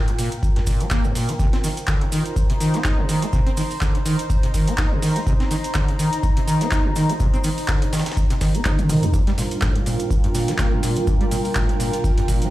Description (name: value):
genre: acid house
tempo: 124 BPM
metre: 4/4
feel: swing 56% on 16ths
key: unclear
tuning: A4 = 440 Hz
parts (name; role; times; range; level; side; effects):
- acid bass, saw; riff; 0.0-12.5 s; G2 to Eb4; -23 LUFS; equal; overdrive, lush chorus, sidechain pumping, tape echo
- warbly tape-like pad; texture; 0.0-12.5 s; Eb4 to Bb5; -28 LUFS; equal; chorus, built-in reverb, sidechain pumping
- electro analog drum machine; drums; 0.1-12.5 s; handclaps, hi-hat, toms; -28 LUFS; equal; none
- cabasa; percussion; 0.1-12.5 s; none; -36 LUFS; right 3 dB; none
- breakbeat sampler-style drum kit; drums; 0.2-12.4 s; hi-hat, snare drum; -37 LUFS; equal; sidechain pumping on hats, high-pass filter on hats, high-pass filter on snare
- electronic kick drum; drums; 0.4-12.4 s; none; -21 LUFS; equal; none
- string machine, full ensemble; sustained chords; 9.1-12.5 s; G3 to Bb4; -28 LUFS; right 1 dB; ensemble chorus, sidechain pumping
room: light reverb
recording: played on a big sound system in a bare room, large studio reverb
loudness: -18 LUFS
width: side -16 dB against mid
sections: 0.0-12.5 A section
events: drum fill 8.7-9.1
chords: 0.0 Gm7; 1.4 Cm7; 9.1 Gm7